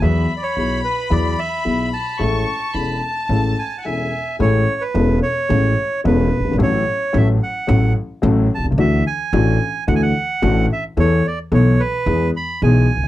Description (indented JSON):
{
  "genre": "tango",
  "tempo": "110 BPM",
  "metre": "4/4",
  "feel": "rubato",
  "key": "A major",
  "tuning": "A4 = 440 Hz",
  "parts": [
    { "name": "bandoneon", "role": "melody", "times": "0.0-13.1 s", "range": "B4 to B5", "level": "-22 LUFS", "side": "right 3 dB", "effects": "none" },
    { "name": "warm chamber violin section", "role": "second line", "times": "0.0-4.4 s", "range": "G#5 to C#6", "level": "-26 LUFS", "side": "left 5 dB", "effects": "none" },
    { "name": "dark concert grand piano", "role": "accompaniment", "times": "0.0-13.1 s", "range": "E1 to A4", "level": "-19 LUFS", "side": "left 3 dB", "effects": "none" },
    { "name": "upright bass", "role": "bass", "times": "0.0-13.1 s", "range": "E1 to E2", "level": "-19 LUFS", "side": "right 2 dB", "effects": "none" }
  ],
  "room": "little or no reverb",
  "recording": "dry, close 1970s-style studio recording",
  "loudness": "-15 LUFS",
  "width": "side -14 dB against mid",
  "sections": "0.0-4.4 A section; 4.4-13.1 B section",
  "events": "break 3.8-4.4",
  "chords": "0.0 Eadd9; 2.2 Amaj7; 6.6 F#m/A; 8.8 Dadd9; 11.0 Esus4; 12.1 E"
}